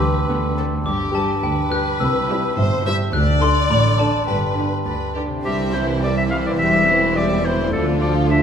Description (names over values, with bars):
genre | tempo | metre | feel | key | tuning
cinematic, playful, whimsical film cue | 105 BPM | 2/4 | straight | G major | A4 = 440 Hz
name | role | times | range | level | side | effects
glockenspiel with soft plastic mallets | melody | 0.0-4.8 s | G5 to F#6 | -24 LUFS | left 2 dB | none
warm chamber violin section | melody | 0.0-8.4 s | F4 to E5 | -30 LUFS | left 5 dB | none
rich chamber violin section | second line | 0.0-8.4 s | C4 to E5 | -25 LUFS | left 2 dB | none
rich symphonic viola section | accompaniment | 0.0-8.4 s | D3 to G4 | -26 LUFS | right 2 dB | none
concert harp | arpeggios | 0.0-8.4 s | G2 to E5 | -27 LUFS | left 3 dB | none
rich chamber double bass section | bass | 0.0-8.4 s | E1 to D2 | -24 LUFS | right 2 dB | none
rich symphonic cello section | bass | 0.0-8.4 s | C2 to A2 | -27 LUFS | right 2 dB | none
bright clarinet | second line | 5.4-8.4 s | G4 to F5 | -20 LUFS | left 1 dB | none
dark French horn section | sustained chords | 5.4-8.4 s | E3 to D4 | -25 LUFS | right 1 dB | none
warm tuba | bass | 5.4-8.4 s | E1 to D2 | -27 LUFS | right 4 dB | none
room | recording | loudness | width
wet scoring stage reverb, RT60 1.7 s | minimal, uncompressed stereo recording | -16 LUFS | side -8 dB against mid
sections
0.0-5.4 A section; 5.4-8.4 B section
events
none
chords
0.3 D; 0.9 G; 2.0 C; 3.1 D5; 4.3 G; 5.4 C; 6.6 C/E; 7.7 Dm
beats
0.29 | 0.86 1.44 | 2.01 2.58 | 3.14 3.71 | 4.28 4.86 | 5.44 6.01 | 6.58 7.16 | 7.72 8.29